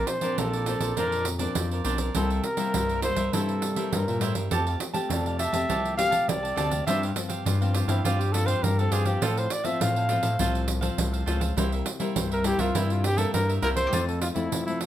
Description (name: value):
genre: samba and choro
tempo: 102 BPM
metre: 4/4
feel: straight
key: F major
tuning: A4 = 440 Hz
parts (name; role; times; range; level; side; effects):
- dark trumpet; melody; 0.0-14.8 s; E4 to F5; -28 LUFS; equal; none
- cavaquinho; accompaniment; 0.0-13.9 s; D4 to A5; -33 LUFS; right 6 dB; none
- nylon-string guitar; accompaniment; 0.0-14.9 s; G2 to G4; -31 LUFS; left 5 dB; none
- smooth synth bass; bass; 0.0-14.9 s; Bb1 to Bb2; -28 LUFS; equal; none
- pandeiro; percussion; 0.1-14.9 s; none; -31 LUFS; right 5 dB; none
- bowl-back mandolin; second line; 13.9-14.9 s; F4 to G4; -38 LUFS; left 2 dB; none
room: moderate studio ambience, RT60 0.5 s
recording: none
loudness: -23 LUFS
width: side -12 dB against mid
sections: 0.0-13.9 A section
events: trumpet solo 0.0-13.9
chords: 0.0 Bbadd9; 2.2 C7; 4.5 Fadd9; 6.9 Csus4/G; 9.2 F/A; 11.6 C7; 13.9 Fmaj7